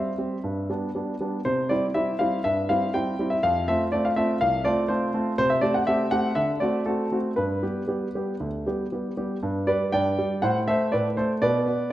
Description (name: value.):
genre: classical-period piano sonatina.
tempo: 121 BPM.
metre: 4/4.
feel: rubato.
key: G major from 5.4 s.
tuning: A4 = 439 Hz.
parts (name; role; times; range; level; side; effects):
clear grand piano; solo; 0.0-11.9 s; C2 to G5; -22 LUFS; equal; none.
room: wet recital hall reverb, RT60 1.5 s.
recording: dark, warm production.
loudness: -22 LUFS.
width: side -14 dB against mid.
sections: 0.0-9.4 A section; 9.4-11.9 B section.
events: none.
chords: 0.4 G; 1.5 C; 3.4 F; 5.4 Am7/C; 6.4 D7; 7.4 G; 10.4 Am69; 11.4 Bm.